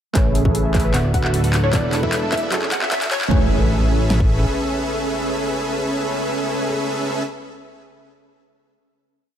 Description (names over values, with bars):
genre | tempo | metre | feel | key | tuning
future bass | 152 BPM | 4/4 | half-time | A major | A4 = 439 Hz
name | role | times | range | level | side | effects
soft round pluck | accompaniment | 0.1-7.6 s | D3 to G#5 | -27 LUFS | right 4 dB | chorus, sidechain pumping, digital delay
soft round pluck | arpeggios | 0.2-3.5 s | F#4 to A5 | -31 LUFS | right 2 dB | chorus, sidechain pumping, digital delay
dense compressed supersaw | riff | 0.2-7.2 s | C#4 to F#5 | -23 LUFS | equal | sidechain pumping, low-pass filter, digital delay
fat analog bass | bass | 0.2-4.5 s | D1 to A1 | -20 LUFS | equal | sidechain pumping
big-room dance drum kit | drums | 0.2-4.3 s | kick drum, snare drum | -20 LUFS | equal | overdrive
trap drum kit | drums | 0.2-3.3 s | handclaps, hi-hat | -25 LUFS | left 1 dB | overdrive
riser and impact | sound effects | 1.5-7.6 s | none | -29 LUFS | equal | none
hollow square pluck | melody | 1.1-3.3 s | C#5 to F#5 | -27 LUFS | left 2 dB | lush chorus, sidechain pumping, digital delay
room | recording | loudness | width
light reverb, digital ambience | high-pass filter | -17 LUFS | side -10 dB against mid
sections
0.2-3.3 build; 3.3-6.5 final chord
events
build-up 0.2-3.3; drum fill 0.2-3.3; filter sweep on supersaw synth 0.2-3.3; filter sweep 0.2-3.3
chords
0.2 Amaj9; 0.9 D69; 1.7 E7sus4; 2.5 F#m9; 3.3 Amaj9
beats
| 0.15 0.55 0.94 1.34 | 1.73 2.13 2.52 2.92 | 3.31 3.71 4.10 4.50 | 4.89 5.29 5.68 6.07